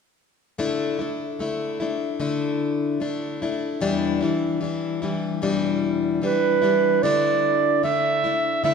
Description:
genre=acoustic folk duo or small band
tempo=75 BPM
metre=4/4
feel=straight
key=unclear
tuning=A4 = 440 Hz
part: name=picked plugged-in steel-string acoustic guitar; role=accompaniment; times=0.6-8.7 s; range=E2 to E4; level=-23 LUFS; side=left 4 dB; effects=none
part: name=mellow clarinet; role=melody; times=6.2-8.7 s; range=B4 to E5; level=-19 LUFS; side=right 6 dB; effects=none
room=moderate concert hall reverb, RT60 2.3 s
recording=minimal, uncompressed stereo recording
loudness=-21 LUFS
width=side -6 dB against mid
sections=0.6-7.0 A section; 7.0-8.7 B section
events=none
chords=0.6 Dsus2; 3.8 Em7; 7.0 Dsus2

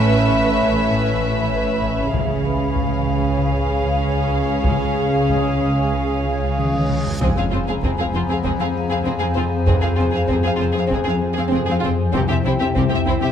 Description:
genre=cinematic, suspense film score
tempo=97 BPM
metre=4/4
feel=straight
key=unclear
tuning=A4 = 440 Hz
part: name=warm chamber violin section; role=melody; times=0.0-13.3 s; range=G4 to E#5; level=-27 LUFS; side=left 2 dB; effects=none
part: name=dark chamber viola section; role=accompaniment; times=0.0-13.3 s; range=C4 to B4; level=-24 LUFS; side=right 2 dB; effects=none
part: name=warbly tape-like pad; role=sustained chords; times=0.0-13.3 s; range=C5 to B5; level=-27 LUFS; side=equal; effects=chorus, built-in reverb
part: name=concert harp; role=riff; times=0.0-13.3 s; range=F2 to C#4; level=-27 LUFS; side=left 9 dB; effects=none
part: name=warm chamber cello section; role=bass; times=0.0-13.3 s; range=F2 to C#3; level=-26 LUFS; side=right 1 dB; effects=none
part: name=warm chamber double bass section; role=bass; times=0.0-13.1 s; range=F1 to C#2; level=-25 LUFS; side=right 3 dB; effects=none
part: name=swarming drone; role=drone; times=0.0-13.3 s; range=A1 to F2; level=-25 LUFS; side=equal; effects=built-in reverb
part: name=vibraphone with soft mallets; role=texture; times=0.0-13.3 s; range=G4 to D#6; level=-33 LUFS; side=left 2 dB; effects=none
part: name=warm chamber violin section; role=texture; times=0.0-1.8, 7.2-11.8 s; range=Ab5 to E6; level=-34 LUFS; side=left 6 dB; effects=none
part: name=taiko ensemble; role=drums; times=2.1-13.3 s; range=none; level=-25 LUFS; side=equal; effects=none
part: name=reverse cymbal and impact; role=sound effects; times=6.9-9.7 s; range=none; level=-29 LUFS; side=equal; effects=none
part: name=warm chamber violin section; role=second line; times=7.2-13.3 s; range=C4 to Ab4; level=-27 LUFS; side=equal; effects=none
part: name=mellow French horn section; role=sustained chords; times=7.2-13.3 s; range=C4 to Ab4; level=-26 LUFS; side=left 5 dB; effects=none
room=moderate concert hall reverb, RT60 2.2 s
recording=none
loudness=-17 LUFS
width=side -8 dB against mid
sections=0.0-7.2 A section; 7.2-13.3 B section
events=drum fill 6.6-7.2; reverse cymbal 6.9-7.2; impact 7.2-9.7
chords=0.0 Aadd9; 2.1 C#; 7.2 Fm; 12.1 C

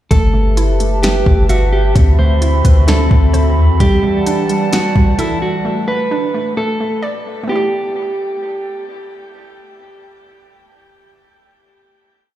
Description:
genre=hip hop, atmospheric cloud-rap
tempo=130 BPM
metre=4/4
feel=half-time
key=G major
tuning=A4 = 440 Hz
part: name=mellow electric guitar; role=melody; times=0.1-8.8 s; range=E4 to C5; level=-20 LUFS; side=right 1 dB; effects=ping-pong delay
part: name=warbly tape-like pad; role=sustained chords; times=0.4-5.6 s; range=E3 to B5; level=-21 LUFS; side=equal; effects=chorus, built-in reverb, sidechain pumping
part: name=hollow square pluck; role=arpeggios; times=0.1-10.9 s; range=G3 to E5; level=-21 LUFS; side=right 3 dB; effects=chorus, ping-pong delay
part: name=long sustained 808-style bass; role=bass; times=0.1-3.8 s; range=F#1 to E2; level=-12 LUFS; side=equal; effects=none
part: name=smooth R&B drum kit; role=drums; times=0.1-5.3 s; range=hi-hat, kick drum, snare drum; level=-14 LUFS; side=equal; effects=none
room=little or no reverb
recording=played on a big sound system in a bare room, large studio reverb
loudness=-12 LUFS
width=side -13 dB against mid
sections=0.1-7.5 verse; 7.5-11.2 final chord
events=none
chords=0.1 G69; 2.0 D13; 3.8 Em11; 5.6 Bm7; 7.5 G69

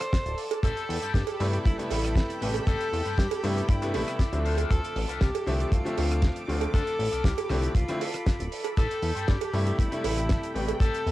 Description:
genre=nu-disco, nu disco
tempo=118 BPM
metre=4/4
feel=straight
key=A minor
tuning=A4 = 440 Hz
part: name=clear tenor saxophone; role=melody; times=0.0-11.1 s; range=E4 to C5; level=-33 LUFS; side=left 1 dB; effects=tape echo
part: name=lush unison pad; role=sustained chords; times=0.0-11.1 s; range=A4 to D6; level=-38 LUFS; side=right 1 dB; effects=chorus, sidechain pumping
part: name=damped 70s drum kit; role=drums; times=0.0-11.1 s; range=hi-hat, rim click, shaker, snare drum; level=-36 LUFS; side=right 1 dB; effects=cassette tape
part: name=kick drum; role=drums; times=0.1-10.9 s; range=none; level=-24 LUFS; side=equal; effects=cassette tape
part: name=chorused synth bass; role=bass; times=0.3-11.1 s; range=D1 to G2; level=-29 LUFS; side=equal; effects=tube saturation
part: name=cowbell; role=percussion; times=0.5-10.8 s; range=none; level=-34 LUFS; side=right 11 dB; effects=none
part: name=electric guitar with an envelope filter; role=riff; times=0.6-11.0 s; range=C4 to A5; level=-39 LUFS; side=left 9 dB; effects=lush chorus
part: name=bright grand piano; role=accompaniment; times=1.4-11.1 s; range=C3 to E5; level=-33 LUFS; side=left 1 dB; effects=none
room=studio ambience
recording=home recording on cassette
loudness=-24 LUFS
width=side -16 dB against mid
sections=0.0-11.1 A section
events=clean electric guitar fill 3.2-4.7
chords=0.0 D7(no3); 0.6 Am9; 4.5 Dm7; 8.8 Am9

